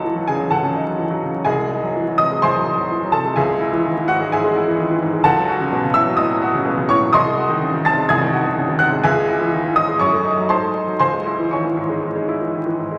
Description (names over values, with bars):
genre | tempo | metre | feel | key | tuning
classical, virtuoso piano study | 126 BPM | 4/4 | rubato | C# minor | A4 = 442 Hz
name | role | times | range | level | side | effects
clear grand piano | solo | 0.0-13.0 s | B#1 to A6 | -18 LUFS | equal | none
room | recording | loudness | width
wet scoring stage reverb, RT60 2.0 s | vinyl crackle | -18 LUFS | mono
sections
0.0-13.0 A section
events
none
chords
0.0 D#m7b5/C#; 1.5 G#7/B#; 3.4 C#m; 5.3 F#m/C#; 7.1 G#7/B#; 9.0 C#m; 10.0 D#dim/F#; 10.5 G#7b9; 11.0 C#m